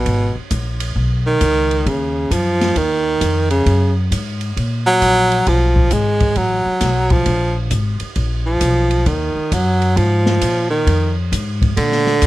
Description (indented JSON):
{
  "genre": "jazz, small-group swing and bop",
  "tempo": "133 BPM",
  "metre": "4/4",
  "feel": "swing 66% on 8ths",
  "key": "Eb minor",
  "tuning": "A4 = 439 Hz",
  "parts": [
    { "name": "clear baritone saxophone", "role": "second line", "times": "0.0-12.3 s", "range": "Cb3 to Ab3", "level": "-16 LUFS", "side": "right 1 dB", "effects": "none" },
    { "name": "upright bass", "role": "bass", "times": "0.0-12.3 s", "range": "Ab1 to Bb2", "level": "-18 LUFS", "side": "equal", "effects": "none" },
    { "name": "open jazz drum kit", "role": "drums", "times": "0.1-12.3 s", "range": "hi-hat, kick drum, ride cymbal, snare drum", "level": "-23 LUFS", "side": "equal", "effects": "none" }
  ],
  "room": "little or no reverb",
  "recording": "close, detailed microphones",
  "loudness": "-14 LUFS",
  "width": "side -16 dB against mid",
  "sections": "0.0-12.3 A section",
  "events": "baritone saxophone solo 0.0-12.3",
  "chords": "0.0 Abm; 1.9 Ebm7; 5.5 B5; 7.3 Bb5; 9.1 Ebm; 10.9 Fm7"
}